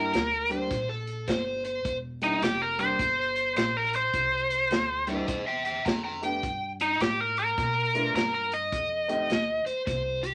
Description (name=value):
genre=electric blues shuffle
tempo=105 BPM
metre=4/4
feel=swing 64% on 8ths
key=unclear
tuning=A4 = 435 Hz
part: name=biting lead guitar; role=melody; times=0.0-9.6 s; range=Eb4 to Eb5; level=-28 LUFS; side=equal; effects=overdrive
part: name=warm grand piano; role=accompaniment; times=0.0-9.3 s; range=G3 to G4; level=-35 LUFS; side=equal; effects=none
part: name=upright bass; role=bass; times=0.0-10.3 s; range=E1 to B2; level=-40 LUFS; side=equal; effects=none
part: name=vintage drum kit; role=drums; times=0.1-10.3 s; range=hi-hat, kick drum, snare drum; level=-34 LUFS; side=equal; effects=none
part: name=overdriven slide guitar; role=second line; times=0.5-10.3 s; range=G4 to Bb5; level=-33 LUFS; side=equal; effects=none
room=light reverb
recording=vinyl crackle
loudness=-28 LUFS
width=mono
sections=0.0-10.3 A section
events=none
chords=0.0 C9; 6.4 Gadd9; 8.7 F7(no3)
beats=0.13 0.71 1.28 | 1.85 2.42 3.00 3.57 | 4.14 4.71 5.28 5.86 | 6.43 7.00 7.57 8.15 | 8.72 9.29 9.87